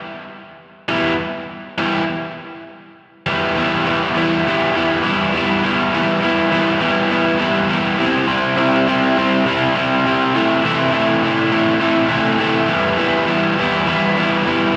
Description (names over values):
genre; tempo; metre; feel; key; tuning
rock; 102 BPM; 4/4; straight; E minor; A4 = 440 Hz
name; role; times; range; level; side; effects
overdriven electric guitar; solo; 0.9-14.8 s; C3 to E4; -17 LUFS; equal; slapback echo, tape echo
room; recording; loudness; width
moderate lush hall reverb, RT60 2.3 s; live gig heard through the venue's PA, cassette tape, recital hall reverb; -17 LUFS; mono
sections
0.0-3.3 A section; 3.3-14.8 B section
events
none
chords
0.0 Em; 8.0 C; 10.4 Am/C; 12.7 Em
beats
0.30 | 0.89 1.49 2.08 2.68 | 3.27 3.86 4.46 5.05 | 5.64 6.23 6.82 7.41 | 8.00 8.59 9.17 9.76 | 10.35 10.94 11.53 12.12 | 12.70 13.29 13.88 14.47